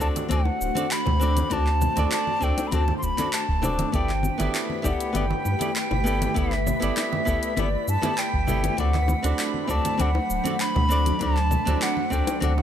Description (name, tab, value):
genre	sunset chillout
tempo	99 BPM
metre	4/4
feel	straight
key	G major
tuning	A4 = 440 Hz
part	hollow concert flute	melody	0.0-12.6 s	D5 to C6	-28 LUFS	left 1 dB	tape echo
part	flamenco guitar	accompaniment	0.0-12.5 s	B3 to D5	-29 LUFS	moving between left 4 dB and right 4 dB	auto-pan, tape echo
part	ethereal airy pad	sustained chords	0.0-12.6 s	F#3 to C5	-31 LUFS	right 1 dB	ensemble chorus, built-in reverb
part	warm sub bass	bass	0.0-12.6 s	D1 to G2	-25 LUFS	equal	none
part	deep house drum kit	drums	0.0-12.6 s	congas, handclaps, hi-hat, shaker	-31 LUFS	right 2 dB	studio reverb
part	electronic kick drum	drums	0.0-12.2 s	none	-29 LUFS	equal	studio reverb
part	congas and bongos	percussion	0.3-12.5 s	none	-32 LUFS	left 4 dB	none
part	twinkling granular texture	texture	4.3-12.6 s	B5	-38 LUFS	right 3 dB	built-in reverb
room	light reverb, digital ambience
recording	none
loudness	-21 LUFS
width	side -10 dB against mid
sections	0.0-12.6 A section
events	none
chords	0.0 D7; 3.9 G69; 8.8 D7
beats	0.30 0.91 | 1.51 2.12 2.73 3.33 | 3.94 4.54 5.15 5.76 | 6.36 6.97 7.57 8.18 | 8.79 9.39 10.00 10.60 | 11.21 11.82 12.42